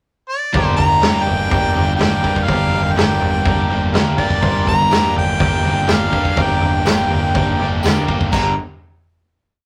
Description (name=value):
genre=garage rock duo or trio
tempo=123 BPM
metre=4/4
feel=straight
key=G minor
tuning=A4 = 440 Hz
part: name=warm harmonica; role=melody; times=0.3-8.5 s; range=D5 to Bb5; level=-22 LUFS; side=equal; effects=overdrive
part: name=overdriven electric guitar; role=riff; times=0.5-8.5 s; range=G2 to G4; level=-24 LUFS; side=equal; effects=none
part: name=fuzz picked electric bass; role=bass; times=0.5-8.6 s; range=G1 to G2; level=-24 LUFS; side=equal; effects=overdrive
part: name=raw garage drum kit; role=drums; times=0.5-8.4 s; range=crash cymbal, kick drum, snare drum, toms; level=-20 LUFS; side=equal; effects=none
part: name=combo organ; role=sustained chords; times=0.6-8.6 s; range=G4 to F5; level=-28 LUFS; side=equal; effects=none
part: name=tambourine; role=percussion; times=4.9-8.5 s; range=none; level=-38 LUFS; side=equal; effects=none
room=moderate studio reverb, RT60 0.6 s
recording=rough rehearsal-room recording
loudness=-16 LUFS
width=mono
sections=0.0-0.5 pickup bar; 0.5-8.3 verse; 8.3-9.7 final chord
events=none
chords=0.0 N.C.; 0.5 Gm